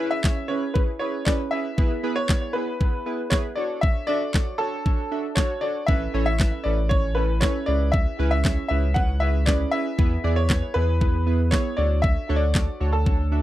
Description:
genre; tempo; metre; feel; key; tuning
dance-pop; 117 BPM; 4/4; straight; unclear; A4 = 440 Hz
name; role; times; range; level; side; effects
clear baby grand piano; melody; 0.0-13.4 s; A4 to F#5; -27 LUFS; left 2 dB; tape echo
chorused retro synth keys; accompaniment; 0.0-13.4 s; B3 to E5; -28 LUFS; right 3 dB; sidechain pumping
downlifter; sound effects; 0.1-1.8 s; none; -58 LUFS; left 1 dB; none
pop drum kit; drums; 0.2-13.2 s; handclaps, kick drum, snare drum; -22 LUFS; equal; none
warm sub bass; bass; 5.9-13.4 s; A1 to E2; -22 LUFS; equal; sidechain pumping
room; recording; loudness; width
little or no reverb; dry, close 1970s-style studio recording; -20 LUFS; side -14 dB against mid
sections
0.0-13.4 A section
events
none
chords
0.0 C#m7; 1.8 E; 3.6 Dmaj7; 5.9 Aadd9; 7.7 C#m7; 10.0 E; 11.8 Dmaj7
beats
0.24 0.76 1.27 | 1.78 2.29 2.81 3.32 | 3.83 4.34 4.86 5.37 | 5.88 6.40 6.91 7.42 | 7.93 8.45 8.96 9.47 | 9.99 10.50 11.01 11.53 | 12.04 12.55 13.06

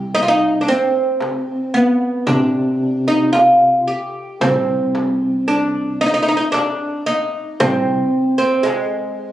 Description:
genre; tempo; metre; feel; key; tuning
Arabic maqam ensemble; 112 BPM (eighths); 10/8; straight; C maqam nahawand; A4 = 439 Hz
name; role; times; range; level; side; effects
oud; melody; 0.0-9.3 s; Ab3 to G4; -15 LUFS; right 1 dB; none
overdriven tine electric piano; bass; 0.0-8.0 s; C2 to C3; -22 LUFS; equal; medium tremolo
darbuka; percussion; 0.2-8.9 s; none; -31 LUFS; equal; none
frame drum; percussion; 1.2-8.9 s; none; -23 LUFS; left 1 dB; none
room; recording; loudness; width
moderate recital hall reverb, RT60 1.5 s; recorded on a phone in the room, club reverb; -15 LUFS; side -13 dB against mid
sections
0.0-9.3 A section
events
none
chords
none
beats
0.13 0.67 1.20 1.74 2.27 2.80 3.34 3.87 | 4.40 4.94 5.47 6.00 6.54 7.07 7.60 8.13 8.67 9.20

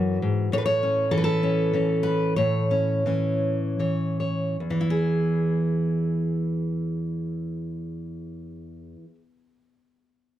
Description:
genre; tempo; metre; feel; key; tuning
folk, solo fingerstyle acoustic guitar; 48-67 BPM (dotted quarters); 6/8; rubato; unclear; A4 = 440 Hz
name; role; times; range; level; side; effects
fingerpicked steel-string acoustic guitar; solo; 0.0-9.2 s; E2 to C#5; -23 LUFS; equal; none
room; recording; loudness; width
light reverb; close, detailed microphones; -22 LUFS; side -12 dB against mid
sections
0.0-4.6 A section; 4.6-9.5 B section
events
slowing down 0.5-4.6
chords
0.0 Esus2; 0.5 A; 4.6 N.C.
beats
| 0.52 1.42 | 2.37 3.42 | 4.60 5.83 | 7.04 8.26

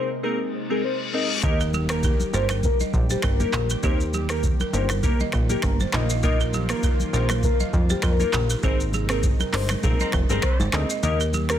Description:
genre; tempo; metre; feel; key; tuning
afrobeats; 100 BPM; 4/4; swing 55% on 16ths; Eb major; A4 = 441 Hz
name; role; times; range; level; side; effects
soft octave-layered synth lead; melody; 0.0-11.6 s; G4 to Eb5; -29 LUFS; left 2 dB; chorus, phaser, digital delay
glassy digital keys; accompaniment; 0.0-11.6 s; Bb3 to Bb4; -30 LUFS; left 2 dB; chorus
lush unison pad; sustained chords; 0.0-11.6 s; C3 to G4; -34 LUFS; equal; chorus
reverse cymbal and impact; sound effects; 0.5-3.8 s; none; -30 LUFS; left 5 dB; none
plucky analog bass; bass; 1.4-11.6 s; F1 to F2; -25 LUFS; equal; none
booming analog drum machine; drums; 1.4-11.6 s; finger snaps, handclaps, hi-hat, kick drum, rim click, shaker; -24 LUFS; equal; soft clipping on snare
congas; percussion; 1.4-11.5 s; none; -33 LUFS; left 2 dB; none
balafon; riff; 1.6-11.5 s; G4 to Eb5; -32 LUFS; right 10 dB; digital delay
clear horn section; second line; 10.0-10.7 s; Eb3 to Bb4; -32 LUFS; left 2 dB; none
room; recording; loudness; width
digital ambience; dense, heavily limited modern master; -20 LUFS; side -10 dB against mid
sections
0.0-1.4 A section; 1.4-11.6 B section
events
reverse cymbal 0.5-1.4; impact 1.4-3.8; band accent 8.6-11.0; kick muted 11.0-11.6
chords
0.0 Abadd9; 1.4 Eb; 5.9 Bbsus4; 8.6 Abadd9; 11.0 Eb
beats
0.23 0.83 | 1.43 2.03 2.63 3.23 | 3.83 4.43 5.03 5.63 | 6.23 6.83 7.43 8.03 | 8.63 9.23 9.83 10.43 | 11.03

